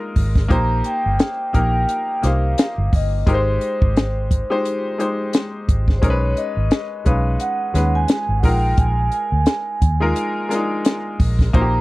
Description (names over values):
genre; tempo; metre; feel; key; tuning
lush 1970s-style soul; 87 BPM; 4/4; swing 58% on 16ths; unclear; A4 = 440 Hz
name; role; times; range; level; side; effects
vibraphone with soft mallets; melody; 0.0-11.8 s; Bb4 to Bb5; -24 LUFS; right 1 dB; none
clear grand piano; accompaniment; 0.0-11.8 s; Ab3 to C5; -24 LUFS; left 2 dB; none
vintage muted fingered electric bass; bass; 0.2-11.8 s; G1 to D#2; -19 LUFS; equal; none
compact cocktail drum kit; drums; 0.2-11.7 s; hi-hat, kick drum, snare drum; -17 LUFS; equal; none
room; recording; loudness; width
little or no reverb; dry, close 1970s-style studio recording; -16 LUFS; side -20 dB against mid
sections
0.0-11.8 A section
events
none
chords
0.0 Bb7sus4; 0.5 Eb6; 3.3 Abmaj7; 6.0 B69; 8.4 Bb7sus4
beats
| 0.50 1.19 1.89 2.58 | 3.27 3.96 4.65 5.34 | 6.03 6.71 7.40 8.09 | 8.78 9.47 10.16 10.85 | 11.54